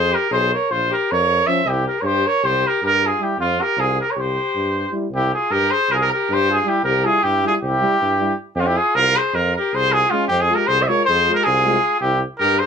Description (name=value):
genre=balkan folk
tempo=313 BPM (eighths)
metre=9/8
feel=straight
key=C phrygian dominant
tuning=A4 = 441 Hz
part: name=warm trumpet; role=melody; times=0.0-12.7 s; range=F4 to E5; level=-17 LUFS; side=right 1 dB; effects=none
part: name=bright alto saxophone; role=second line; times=0.0-12.7 s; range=C4 to C5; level=-25 LUFS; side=left 6 dB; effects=none
part: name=warm tuba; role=bass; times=0.0-12.6 s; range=Bb1 to G2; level=-24 LUFS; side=right 1 dB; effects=none
part: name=dark euphonium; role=accompaniment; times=1.5-11.8 s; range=Db4 to F4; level=-27 LUFS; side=left 10 dB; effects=none
part: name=warm trombone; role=accompaniment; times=1.5-11.8 s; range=F3 to Ab3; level=-27 LUFS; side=right 7 dB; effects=none
room=light reverb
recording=none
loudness=-16 LUFS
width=side -7 dB against mid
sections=0.0-5.1 A section; 5.1-12.7 B section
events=none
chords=0.0 F5; 0.7 Bbm; 1.6 C; 3.4 F5; 4.1 C; 8.6 Fm; 12.0 C